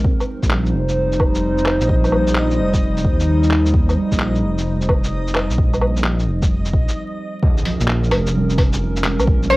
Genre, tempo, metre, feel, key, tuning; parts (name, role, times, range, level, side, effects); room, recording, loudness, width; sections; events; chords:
future garage; 130 BPM; 4/4; swing 66% on 16ths; A4 = 440 Hz
muted felt-like synth keys; accompaniment; 0.0-9.6 s; F3 to C4; -27 LUFS; right 3 dB; chorus, sidechain pumping, cassette tape, tape echo
warbly tape-like pad; sustained chords; 0.0-9.6 s; G3 to C5; -23 LUFS; equal; chorus, built-in reverb, phaser, sidechain pumping, cassette tape
dark detuned saw bass; bass; 0.0-9.6 s; F1 to Eb2; -19 LUFS; equal; sidechain pumping
electronic kick drum; drums; 0.0-9.4 s; -18 LUFS; equal; studio reverb, cassette tape
backwards swelling texture; texture; 0.0-7.0 s; Eb5; -33 LUFS; left 1 dB; built-in reverb, cassette tape
lo-fi sampler-style drum kit; drums; 0.2-9.6 s; handclaps, hi-hat, shaker, woodblock; -23 LUFS; equal; studio reverb, cassette tape
impact; sound effects; 7.4-9.3 s; -28 LUFS; equal
glassy wavetable pluck; melody; 9.5-9.6 s; Db5; -12 LUFS; left 1 dB; chorus, phaser, cassette tape
little or no reverb; home recording on cassette, vinyl crackle; -15 LUFS; side -20 dB against mid
0.0-7.4 A section; 7.4-9.6 B section
stop 7.0-7.4; impact 7.4-9.3
0.0 Cm; 7.4 Bbm7